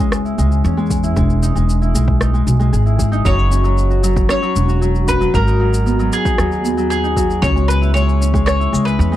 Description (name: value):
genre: folktronica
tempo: 115 BPM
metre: 4/4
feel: straight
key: unclear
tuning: A4 = 439 Hz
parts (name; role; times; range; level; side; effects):
- Celtic harp; arpeggios; 0.0-9.2 s; F#3 to G#4; -19 LUFS; left 2 dB; tape echo
- upright bass; bass; 0.0-9.2 s; E1 to E2; -16 LUFS; equal; none
- electronic shaker and rim click; drums; 0.0-9.2 s; none; -26 LUFS; equal; overdrive, small room ambience
- electronic kick drum; drums; 0.9-8.4 s; none; -20 LUFS; equal; overdrive, small room ambience
- mandolin; melody; 3.3-9.2 s; G#4 to C#5; -21 LUFS; left 1 dB; none
room: light reverb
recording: dry, close 1970s-style studio recording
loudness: -13 LUFS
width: side -13 dB against mid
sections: 0.0-9.2 A section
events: none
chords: 0.0 C#m; 1.2 Emaj7; 3.3 F#5; 5.3 G#m7; 7.4 C#m